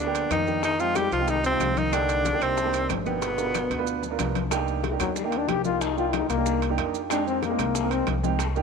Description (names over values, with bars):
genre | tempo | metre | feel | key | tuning
Afro-Cuban jazz | 185 BPM | 4/4 | straight | C minor | A4 = 440 Hz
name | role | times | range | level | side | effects
clear tenor saxophone | melody | 0.0-4.2 s | B3 to G4 | -26 LUFS | equal | none
warm trombone | second line | 0.0-8.1 s | B2 to G4 | -29 LUFS | left 9 dB | none
upright bass | bass | 0.0-8.6 s | G1 to F2 | -31 LUFS | equal | none
dark grand piano | accompaniment | 0.1-8.6 s | Ab3 to G5 | -30 LUFS | right 14 dB | none
bongos | percussion | 0.1-8.6 s | none | -36 LUFS | left 11 dB | none
congas | percussion | 0.1-8.6 s | none | -35 LUFS | left 11 dB | none
maracas | percussion | 0.1-8.6 s | none | -39 LUFS | right 15 dB | none
timbales | percussion | 0.1-8.6 s | none | -36 LUFS | right 14 dB | none
claves | percussion | 0.3-8.2 s | none | -41 LUFS | left 14 dB | none
room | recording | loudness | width
moderate plate reverb, RT60 3.6 s | 1960s-style stereo with parts hard left and right | -23 LUFS | side -5 dB against mid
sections
0.0-4.5 A section; 4.5-8.6 B section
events
drum fill 3.2-4.5; trombone solo 4.5-8.6; grand piano fill 6.6-7.1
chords
0.0 G7#9; 0.6 Fm9; 1.9 Cm9; 3.2 G7#9; 4.5 Cm9; 7.1 Fm9